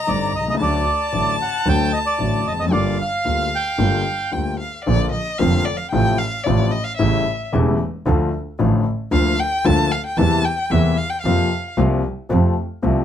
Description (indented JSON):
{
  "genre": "tango",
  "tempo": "113 BPM",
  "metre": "4/4",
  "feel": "rubato",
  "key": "G minor, Bb major from 4.9 s",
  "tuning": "A4 = 440 Hz",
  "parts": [
    { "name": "bandoneon", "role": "melody", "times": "0.0-4.3 s", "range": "D5 to G5", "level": "-22 LUFS", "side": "right 2 dB", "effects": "none" },
    { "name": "warm violin", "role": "second line", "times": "0.0-11.7 s", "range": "D5 to Bb5", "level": "-24 LUFS", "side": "left 2 dB", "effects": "none" },
    { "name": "warm grand piano", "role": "accompaniment", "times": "0.1-13.0 s", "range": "E1 to F#4", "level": "-20 LUFS", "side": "left 4 dB", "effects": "none" },
    { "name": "rich double bass", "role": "bass", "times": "0.1-13.0 s", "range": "E1 to F2", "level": "-22 LUFS", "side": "right 3 dB", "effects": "none" }
  ],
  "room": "light reverb",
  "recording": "none",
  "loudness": "-17 LUFS",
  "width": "side -10 dB against mid",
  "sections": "0.0-4.9 A section; 4.9-13.0 B section",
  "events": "violin solo 4.9-13.0",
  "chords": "0.0 Cmadd9; 0.6 D; 2.7 Gm7; 4.9 Bb; 5.9 F/A; 7.0 A7; 8.1 Dm; 9.1 Bb/D; 10.2 C7/E; 11.2 Fsus4; 12.3 F"
}